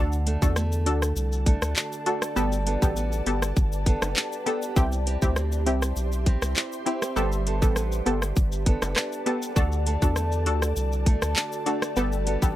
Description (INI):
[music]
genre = dancehall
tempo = 100 BPM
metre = 4/4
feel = straight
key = G major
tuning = A4 = 440 Hz
[part]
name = punchy chord stab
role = accompaniment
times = 0.0-12.6 s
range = B3 to A4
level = -27 LUFS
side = left 1 dB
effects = chorus
[part]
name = ethereal airy pad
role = sustained chords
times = 0.8-12.6 s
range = F#4 to C6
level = -34 LUFS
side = equal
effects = ensemble chorus, built-in reverb, sidechain pumping
[part]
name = flamenco guitar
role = arpeggios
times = 0.0-12.6 s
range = D3 to A4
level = -32 LUFS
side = right 2 dB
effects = digital delay
[part]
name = saturated sub bass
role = bass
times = 0.0-12.6 s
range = F#1 to E2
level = -26 LUFS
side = equal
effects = none
[part]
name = island pop drum kit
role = drums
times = 0.1-12.6 s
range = handclaps, hi-hat, kick drum, rim click, shaker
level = -24 LUFS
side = equal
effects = none
[part]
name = egg shaker and timbales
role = percussion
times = 0.1-12.6 s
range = none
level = -41 LUFS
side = left 3 dB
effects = none
[sound]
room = little or no reverb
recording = none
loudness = -22 LUFS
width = side -14 dB against mid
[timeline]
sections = 0.0-12.6 A section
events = none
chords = 0.0 D; 2.4 Gadd9; 4.8 C; 7.2 Gadd9; 9.6 D; 12.0 Gadd9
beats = 0.56 1.16 1.76 | 2.36 2.96 3.56 4.16 | 4.76 5.36 5.96 6.56 | 7.16 7.76 8.36 8.96 | 9.56 10.16 10.76 11.36 | 11.96